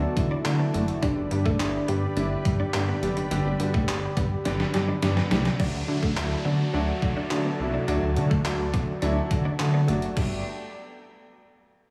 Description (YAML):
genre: dance-pop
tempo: 105 BPM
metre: 4/4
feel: straight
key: G major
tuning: A4 = 439 Hz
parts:
  - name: soft octave-layered synth lead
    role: melody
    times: 0.0-5.0 s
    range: B3 to G4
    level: -34 LUFS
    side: equal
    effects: chorus
  - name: clear grand piano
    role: accompaniment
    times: 0.0-10.4 s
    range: D3 to G4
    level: -33 LUFS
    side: equal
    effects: sidechain pumping, slapback echo
  - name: warm analog pad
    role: sustained chords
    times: 0.0-10.4 s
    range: B3 to B5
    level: -38 LUFS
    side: equal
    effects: chorus, sidechain pumping
  - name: direct-recorded clean electric guitar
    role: riff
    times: 0.0-10.3 s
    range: G3 to D4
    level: -37 LUFS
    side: equal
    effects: ensemble chorus, slapback echo
  - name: chorused synth bass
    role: bass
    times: 0.0-10.4 s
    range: F#1 to D3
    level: -29 LUFS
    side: equal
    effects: sidechain pumping
  - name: detuned 8-bit digital drum machine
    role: drums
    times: 0.2-10.3 s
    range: crash cymbal, handclaps, hi-hat, kick drum, snare drum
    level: -31 LUFS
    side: equal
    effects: overdrive
  - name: downlifter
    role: sound effects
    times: 5.6-10.2 s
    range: none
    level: -42 LUFS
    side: equal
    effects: slapback echo
room: moderate lush hall reverb, RT60 2.3 s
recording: big arena sound, studio reverb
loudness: -25 LUFS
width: mono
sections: 0.0-5.6 A section; 5.6-10.2 B section; 10.2-11.9 C section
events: drum fill 4.5-5.6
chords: 0.0 D; 1.0 G; 5.6 D; 10.2 Gadd9